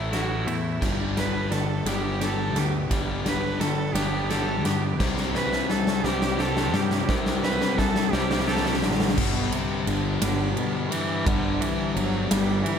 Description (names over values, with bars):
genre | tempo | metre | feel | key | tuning
post-rock | 58 BPM (dotted quarters) | 6/8 | straight | G major | A4 = 440 Hz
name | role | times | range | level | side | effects
rich cello | melody | 0.0-12.8 s | B2 to B4 | -29 LUFS | right 4 dB | slapback echo
twangy electric guitar | arpeggios | 0.0-9.2 s | G2 to G4 | -36 LUFS | right 1 dB | slapback echo
overdriven electric guitar | riff | 0.0-12.8 s | G2 to C4 | -28 LUFS | left 6 dB | none
fuzz fingered electric bass | bass | 0.0-12.6 s | G1 to G2 | -30 LUFS | right 1 dB | overdrive
huge arena drum kit | drums | 0.1-12.8 s | crash cymbal, kick drum, ride cymbal, snare drum | -27 LUFS | equal | none
room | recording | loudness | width
moderate lush hall reverb, RT60 2.3 s | big arena sound | -22 LUFS | side -7 dB against mid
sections
0.0-9.2 A section; 9.2-12.8 B section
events
build-up 0.0-9.2; drum fill 0.0-9.2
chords
0.0 A5; 0.8 G; 5.0 C; 9.2 G5